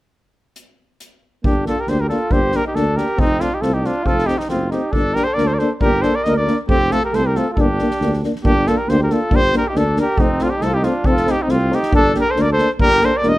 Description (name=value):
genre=balkan folk, Balkan brass band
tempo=137 BPM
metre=2/4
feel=straight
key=G minor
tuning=A4 = 438 Hz
part: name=soft-mallet drum kit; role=percussion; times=0.6-13.3 s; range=hi-hat, kick drum, snare drum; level=-22 LUFS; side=equal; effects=none
part: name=dark euphonium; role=accompaniment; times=1.4-13.3 s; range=A3 to Bb3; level=-24 LUFS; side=right 2 dB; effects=none
part: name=dark tuba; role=bass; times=1.4-13.4 s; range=E1 to D2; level=-22 LUFS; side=equal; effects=none
part: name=warm trumpet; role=melody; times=1.5-13.4 s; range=Eb4 to Eb5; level=-19 LUFS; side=equal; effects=none
part: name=warm flugelhorn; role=second line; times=1.5-13.4 s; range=C4 to Bb4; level=-24 LUFS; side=right 1 dB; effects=none
part: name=breathy euphonium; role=accompaniment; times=1.5-13.3 s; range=C4 to D4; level=-24 LUFS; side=left 3 dB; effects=none
room=light reverb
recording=rough home demo mix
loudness=-15 LUFS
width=side -17 dB against mid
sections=1.4-8.4 A section; 8.4-13.4 A section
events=none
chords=0.6 N.C.; 1.4 Gm; 3.2 F; 4.9 Gm; 6.7 F; 7.6 Gm; 10.2 F; 11.9 Gm